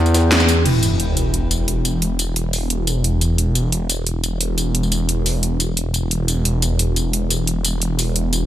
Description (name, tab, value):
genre	dark technical drum and bass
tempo	176 BPM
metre	4/4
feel	straight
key	unclear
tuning	A4 = 440 Hz
part	deep dark ambient pad	sustained chords	0.0-8.5 s	E3 to B5	-29 LUFS	left 1 dB	chorus, built-in reverb
part	growling FM bass	bass	0.0-0.6 s	E2	-14 LUFS	equal	tube saturation
part	drum and bass drum kit	drums	0.1-8.4 s	crash cymbal, hi-hat, snare drum, tambourine	-20 LUFS	equal	overdrive
part	jungle sampler-style drum kit	drums	0.1-0.6 s	ride cymbal, snare drum	-30 LUFS	equal	none
part	phased detuned saw bass	bass	0.7-8.5 s	E1	-19 LUFS	equal	phaser, overdrive
part	sub drop	sound effects	0.7-2.0 s	none	-22 LUFS	equal	none
room	light reverb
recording	none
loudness	-16 LUFS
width	side -12 dB against mid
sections	0.7-8.5 A section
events	band accent 0.3; impact 0.7-2.0; filter sweep on ambient pad 0.7-8.5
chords	0.0 E5